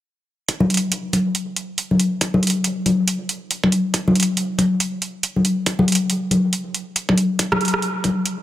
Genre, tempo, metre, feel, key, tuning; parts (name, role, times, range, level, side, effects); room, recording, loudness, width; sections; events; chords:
deep dubstep; 139 BPM; 4/4; swing 60% on 16ths, half-time
deep house drum kit; drums; 0.5-8.4 s; hi-hat, rim click; -21 LUFS; right 2 dB; small room ambience
electronic kick drum; drums; 0.5-8.1 s; -24 LUFS; right 2 dB; high-pass filter on kick, small room ambience, high-pass filter on room
congas; percussion; 0.6-8.1 s; -19 LUFS; left 1 dB; dub echo
light reverb; -18 LUFS; side -13 dB against mid
0.5-8.4 A section